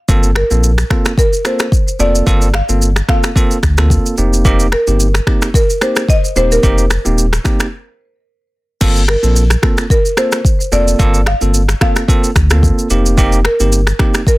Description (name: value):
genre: afrobeats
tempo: 110 BPM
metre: 4/4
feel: swing 55% on 16ths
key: G minor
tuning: A4 = 440 Hz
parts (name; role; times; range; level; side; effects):
- bell-like tine electric piano; accompaniment; 0.1-14.2 s; Bb3 to A4; -18 LUFS; right 2 dB; none
- warm sub bass; bass; 0.1-13.9 s; Eb1 to D2; -13 LUFS; equal; none
- afro-pop drum kit; drums; 0.1-14.4 s; crash cymbal, finger snaps, kick drum, rim click, shaker; -14 LUFS; equal; soft clipping on snare
- buzzing marimba with medium hard mallets; melody; 0.4-14.4 s; Bb4 to F5; -18 LUFS; equal; digital delay
room: little or no reverb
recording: dense, heavily limited modern master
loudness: -10 LUFS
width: side -20 dB against mid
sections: 0.0-8.8 A section; 8.8-14.4 A section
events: break 7.7-8.8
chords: 0.1 Gm11; 4.2 F7sus4; 8.8 Gm11; 12.9 F7sus4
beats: | 0.09 0.63 1.18 1.72 | 2.27 2.81 3.36 3.90 | 4.45 5.00 5.54 6.09 | 6.63 7.18 7.72 8.27 | 8.81 9.36 9.90 10.45 | 10.99 11.54 12.09 12.63 | 13.18 13.72 14.27